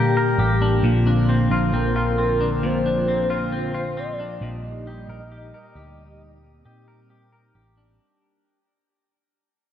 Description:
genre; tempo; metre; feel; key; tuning
dream pop; 67 BPM; 4/4; straight; unclear; A4 = 440 Hz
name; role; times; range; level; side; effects
hollow soft pad; sustained chords; 0.0-8.0 s; D3 to G4; -26 LUFS; left 2 dB; ensemble chorus, shimmer reverb
clean electric guitar; arpeggios; 0.0-8.6 s; Bb2 to Bb4; -24 LUFS; left 2 dB; lush chorus, shimmer reverb, tape echo
hollow-body short-scale picked electric bass; bass; 0.0-8.0 s; A1 to Bb2; -23 LUFS; right 1 dB; none
vibraphone with medium mallets; texture; 0.0-0.6 s; G5 to Bb5; -47 LUFS; right 1 dB; none
warm velvety synth lead; melody; 1.8-7.6 s; Bb4 to Eb5; -27 LUFS; equal; chorus, shimmer reverb
room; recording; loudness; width
moderate scoring stage reverb, RT60 2.0 s; dark, warm production; -19 LUFS; side -10 dB against mid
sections
0.0-8.0 A section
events
fade-out 0.0-8.0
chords
0.0 Ebmaj7/Bb (rootless); 0.8 Bbadd9; 4.4 Ebmaj7/Bb

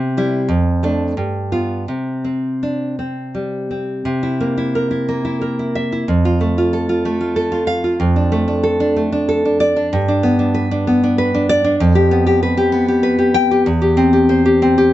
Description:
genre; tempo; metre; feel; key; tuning
romantic piece for solo classical guitar; 80-98 BPM; 3/4; rubato; C major; A4 = 440 Hz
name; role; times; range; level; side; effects
nylon-string guitar; solo; 0.0-14.9 s; E2 to G5; -14 LUFS; equal; none
room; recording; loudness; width
light reverb; dark, warm production, nothing above 8.0 kHz; -14 LUFS; side -14 dB against mid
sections
0.0-4.1 A section; 4.1-14.9 B section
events
none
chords
0.0 C; 0.5 Dm/F; 1.2 G7; 1.9 C5; 4.1 C7; 6.1 F; 8.0 Dm/F; 9.9 G; 11.8 G7/F; 13.7 C/E

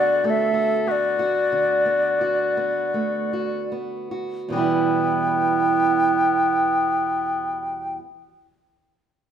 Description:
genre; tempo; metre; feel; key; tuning
celtic folk, Celtic slow air; 37-51 BPM; 4/4; rubato; E minor; A4 = 440 Hz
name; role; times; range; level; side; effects
wooden flute; melody; 0.0-8.0 s; D5 to G5; -21 LUFS; left 1 dB; none
warm cor anglais; second line; 0.0-7.9 s; B3 to A4; -27 LUFS; left 6 dB; none
fingerpicked steel-string acoustic guitar; accompaniment; 0.0-8.1 s; E2 to F#4; -25 LUFS; right 5 dB; none
room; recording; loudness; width
moderate recital hall reverb, RT60 1.4 s; minimal, uncompressed stereo recording; -19 LUFS; side -9 dB against mid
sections
0.0-4.5 A section; 4.5-9.3 B section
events
slowing down 0.0-4.5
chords
0.0 D6; 4.5 Em

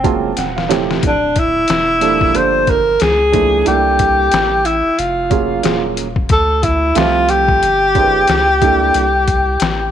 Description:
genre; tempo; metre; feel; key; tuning
hip hop, jazz-hop; 91 BPM; 4/4; swing 58% on 16ths; D minor; A4 = 440 Hz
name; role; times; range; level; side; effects
breathy tenor saxophone; melody; 0.0-9.9 s; C4 to C5; -13 LUFS; left 1 dB; none
warm upright piano; accompaniment; 0.0-9.0 s; C3 to A5; -18 LUFS; right 11 dB; none
soft dub sub bass; bass; 0.0-9.9 s; D1 to D2; -22 LUFS; equal; none
trip hop sampler-style drum kit; drums; 0.0-9.8 s; hi-hat, kick drum, snare drum; -19 LUFS; left 3 dB; none
room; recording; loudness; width
light reverb; 1960s-style stereo; -12 LUFS; side -10 dB against mid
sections
0.0-9.9 A section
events
upright piano fill 0.0-1.0; drum fill 0.4-1.0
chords
0.4 Ebsus2; 1.0 Dmadd9; 2.3 Gm9; 3.0 C#; 3.7 C13; 5.0 F#maj9/E#; 5.6 Ebm11; 6.3 Dm11; 7.6 G7(no3); 8.3 C#9; 8.9 C5

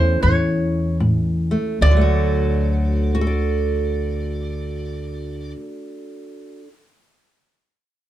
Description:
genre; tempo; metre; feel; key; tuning
acoustic country blues, solo or duo; 73 BPM; 4/4; swing 62% on 8ths; D major; A4 = 440 Hz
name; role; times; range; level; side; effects
metal-body resonator slide guitar; melody; 0.0-5.5 s; C5 to D5; -24 LUFS; right 3 dB; none
fingerpicked steel-string acoustic guitar; accompaniment; 0.0-6.7 s; D2 to D5; -23 LUFS; right 1 dB; none
upright bass; bass; 0.0-5.5 s; D2 to E2; -20 LUFS; left 1 dB; none
room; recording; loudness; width
light reverb; dark, warm production; -18 LUFS; side -13 dB against mid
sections
0.0-1.8 A section; 1.8-5.1 B section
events
slowing down 0.0-1.8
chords
0.0 A; 1.8 D

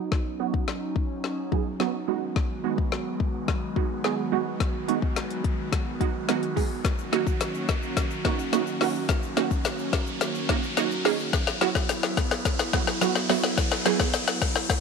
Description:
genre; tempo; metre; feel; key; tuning
dance-pop; 107 BPM; 4/4; straight; unclear; A4 = 440 Hz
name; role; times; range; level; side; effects
wide unison pluck; accompaniment; 0.0-14.5 s; F#3 to G#4; -28 LUFS; right 14 dB; analog chorus, sidechain pumping, low-pass filter
airy breathy pad; sustained chords; 0.0-14.8 s; D#3 to F#4; -32 LUFS; right 1 dB; chorus, sidechain pumping, low-pass filter
riser; sound effects; 0.0-14.8 s; none; -35 LUFS; equal; none
deep house drum kit; drums; 0.1-14.8 s; hi-hat, kick drum, snare drum; -26 LUFS; left 4 dB; none
egg shaker; percussion; 6.8-14.8 s; none; -46 LUFS; left 19 dB; none
room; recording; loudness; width
light reverb, digital ambience; 1960s-style stereo with parts hard left and right; -24 LUFS; side -5 dB against mid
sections
0.0-14.8 A section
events
build-up 0.0-14.8; drum fill 0.0-14.8; riser 0.0-14.8; filter sweep 0.0-14.8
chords
0.0 B; 2.1 G#m7; 6.8 D#m7; 11.3 Esus2

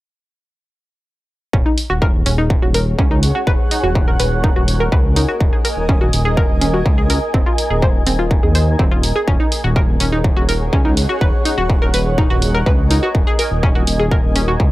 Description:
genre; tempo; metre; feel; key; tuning
melodic techno; 124 BPM; 4/4; straight; Eb minor; A4 = 440 Hz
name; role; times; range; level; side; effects
analog pluck; arpeggios; 1.5-14.5 s; C4 to C5; -21 LUFS; equal; chorus, cassette tape, sidechain pumping, analog delay
swelling detuned saw bass; bass; 1.5-14.7 s; Eb1 to Eb2; -18 LUFS; equal; sidechain pumping
electronic kick drum; drums; 1.5-14.7 s; none; -16 LUFS; equal; distortion, overdrive
granular cloud pad; texture; 2.2-14.7 s; Ab4 to Ab5; -23 LUFS; equal; built-in reverb, sidechain pumping
electronic hi-hat; drums; 1.8-14.5 s; none; -23 LUFS; right 1 dB; none
room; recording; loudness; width
little or no reverb; dry, gritty hardware recording; -13 LUFS; side -17 dB against mid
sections
1.5-14.7 A section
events
none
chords
1.5 Ebm7; 3.5 Bmaj7/D# (rootless); 5.4 Gbadd9/Eb (rootless); 7.3 N.C.; 9.3 Ebm7; 11.2 Bmaj7/D# (rootless); 13.1 Gbadd9/Eb (rootless)

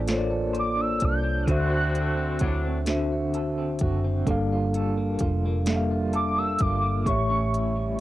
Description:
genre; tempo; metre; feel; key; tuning
slow six-eight R&B; 43 BPM (dotted quarters); 6/8; straight; unclear; A4 = 441 Hz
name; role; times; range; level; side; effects
electric guitar at the edge of break-up; second line; 0.0-8.0 s; A2 to C5; -32 LUFS; right 1 dB; tremolo, cassette tape
mellow tine electric piano; accompaniment; 0.0-8.0 s; A2 to G#5; -27 LUFS; equal; medium stereo tremolo, cassette tape
vintage muted fingered electric bass; bass; 0.0-8.0 s; F1 to D2; -28 LUFS; equal; none
smooth R&B drum kit; drums; 0.1-7.8 s; hi-hat, kick drum, snare drum; -28 LUFS; equal; overdrive
warm velvety synth lead; melody; 0.6-8.0 s; C#6 to G6; -28 LUFS; right 1 dB; chorus, cassette tape
warm horn section; stabs; 1.5-2.8 s; A2 to F#4; -32 LUFS; left 2 dB; cassette tape
room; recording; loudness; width
little or no reverb; home recording on cassette; -22 LUFS; side -15 dB against mid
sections
0.0-8.0 A section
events
none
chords
0.0 Bbmaj9; 1.5 D7; 4.3 Gm9; 7.1 A7

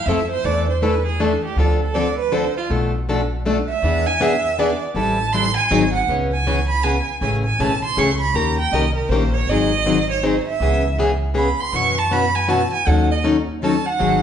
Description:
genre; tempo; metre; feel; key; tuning
acoustic string swing (jazz manouche); 159 BPM; 3/4; swing 62% on 8ths; C# minor from 6.1 s; A4 = 436 Hz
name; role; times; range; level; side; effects
warm violin; second line; 0.0-14.2 s; F4 to C#6; -21 LUFS; right 4 dB; none
picked plugged-in steel-string acoustic guitar; accompaniment; 0.1-14.2 s; B2 to A#4; -20 LUFS; left 3 dB; none
upright bass; bass; 0.1-14.2 s; G#1 to F#2; -22 LUFS; equal; none
room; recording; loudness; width
wet large studio reverb, RT60 1.3 s; band playing live in one room, nothing above 10.8 kHz; -16 LUFS; side -8 dB against mid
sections
0.0-6.1 A section; 6.1-14.2 A section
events
violin solo 0.0-14.2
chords
0.4 E7sus4; 1.6 Dm7; 2.7 Bm7b5; 3.8 E7; 5.0 Am7; 5.7 G#7; 6.1 C#m7; 7.2 Amaj9; 8.4 D#7; 9.5 G#7; 10.6 C#m7; 11.7 F#7sus4; 12.9 D#m7b5

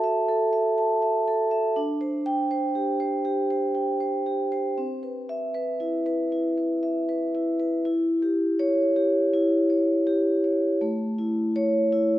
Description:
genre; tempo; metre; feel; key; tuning
classical, contemporary piece for solo vibraphone; 81 BPM; 4/4; straight; unclear; A4 = 440 Hz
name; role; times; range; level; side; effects
vibraphone with soft mallets; solo; 0.0-12.2 s; A3 to A5; -22 LUFS; equal; none
room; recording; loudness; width
wet recital hall reverb, RT60 1.7 s; none; -22 LUFS; side -14 dB against mid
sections
0.0-7.8 A section; 7.8-12.2 B section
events
none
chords
0.0 F#m7; 1.8 D7sus4; 4.8 Cmaj7; 7.8 Em6; 10.8 A

